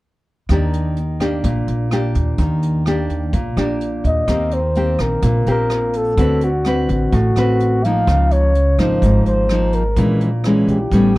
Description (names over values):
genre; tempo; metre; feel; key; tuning
bossa nova; 127 BPM; 4/4; straight; Eb major; A4 = 441 Hz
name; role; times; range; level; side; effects
nylon-string guitar; accompaniment; 0.5-11.2 s; Ab2 to B4; -18 LUFS; equal; none
upright bass; bass; 0.5-11.2 s; Ab1 to Eb2; -20 LUFS; equal; none
jazz brush drum kit; drums; 0.5-11.2 s; hi-hat, kick drum, rim click; -27 LUFS; equal; none
breathy flugelhorn; melody; 4.1-11.2 s; F#4 to F5; -20 LUFS; equal; none
room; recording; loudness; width
little or no reverb; none; -15 LUFS; side -19 dB against mid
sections
0.5-4.3 A section; 4.3-11.2 B section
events
none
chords
0.5 Ebmaj7; 4.3 Eb6; 6.2 D6; 8.1 Db69; 10.0 Bbm7b5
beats
| 0.49 0.97 1.44 1.91 | 2.39 2.86 3.34 3.81 | 4.28 4.76 5.23 5.71 | 6.18 6.65 7.13 7.60 | 8.07 8.55 9.02 9.50 | 9.97 10.45 10.92